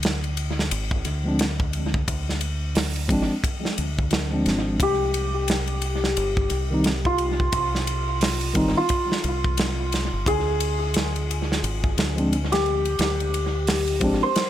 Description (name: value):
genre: trip hop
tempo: 88 BPM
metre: 4/4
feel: swing 60% on 16ths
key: unclear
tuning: A4 = 440 Hz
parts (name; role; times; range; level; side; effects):
- deep dub fingered electric bass; bass; 0.0-14.2 s; G1 to D2; -26 LUFS; equal; none
- modern studio drum kit; drums; 0.0-14.5 s; hi-hat, kick drum, ride cymbal, snare drum; -25 LUFS; equal; analog delay
- mellow tine electric piano; accompaniment; 1.2-14.3 s; Eb3 to Eb4; -26 LUFS; equal; harmonic tremolo, vintage 12-bit sampler grit, tape echo
- santur; melody; 4.8-14.5 s; F4 to C5; -25 LUFS; equal; tape echo
room: light reverb, small room ambience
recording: echo-heavy mix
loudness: -21 LUFS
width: side -12 dB against mid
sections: 0.0-14.5 A section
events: none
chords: 0.0 Dm7b5; 4.8 Cm; 10.3 Ddim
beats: 0.04 0.72 1.40 | 2.08 2.76 3.45 4.13 | 4.81 5.49 6.17 6.86 | 7.54 8.22 8.90 9.58 | 10.26 10.95 11.63 12.31 | 12.99 13.67 14.36